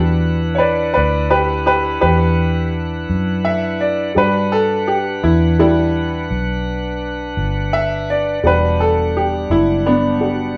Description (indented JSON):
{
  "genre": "slow blues",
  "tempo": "56 BPM (dotted quarters)",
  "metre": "12/8",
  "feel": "straight",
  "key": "E minor",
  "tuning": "A4 = 440 Hz",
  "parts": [
    { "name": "clear upright piano", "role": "accompaniment", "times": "0.0-10.5 s", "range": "G3 to E5", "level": "-18 LUFS", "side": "equal", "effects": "none" },
    { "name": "bright tonewheel organ", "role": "sustained chords", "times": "0.0-10.6 s", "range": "G3 to F#5", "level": "-26 LUFS", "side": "equal", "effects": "slow rotary speaker" },
    { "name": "vintage muted fingered electric bass", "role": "bass", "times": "0.0-10.5 s", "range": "E1 to G2", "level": "-22 LUFS", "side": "equal", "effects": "none" }
  ],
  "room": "moderate large studio reverb, RT60 0.8 s",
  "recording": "band playing live in one room",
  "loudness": "-17 LUFS",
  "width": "mono",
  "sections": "0.0-10.6 A section",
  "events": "upright piano solo 0.0-10.6",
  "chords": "0.0 Em7"
}